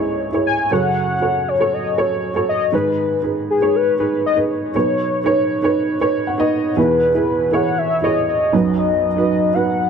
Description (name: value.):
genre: pop.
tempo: 119 BPM.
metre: 4/4.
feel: straight.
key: unclear.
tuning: A4 = 437 Hz.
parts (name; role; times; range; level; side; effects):
warm velvety synth lead; melody; 0.0-9.9 s; G#4 to G#5; -19 LUFS; left 4 dB; chorus.
dark upright piano; accompaniment; 0.0-9.9 s; B1 to F#5; -18 LUFS; right 3 dB; none.
room: moderate plate reverb, RT60 3.2 s.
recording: none.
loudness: -15 LUFS.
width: side -6 dB against mid.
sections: 0.0-6.8 A section; 6.8-9.9 B section.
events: upright piano fill 5.8-6.8.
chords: 0.0 C#m; 0.7 F#m; 2.7 G#m; 4.7 Badd9; 6.8 E; 8.5 B.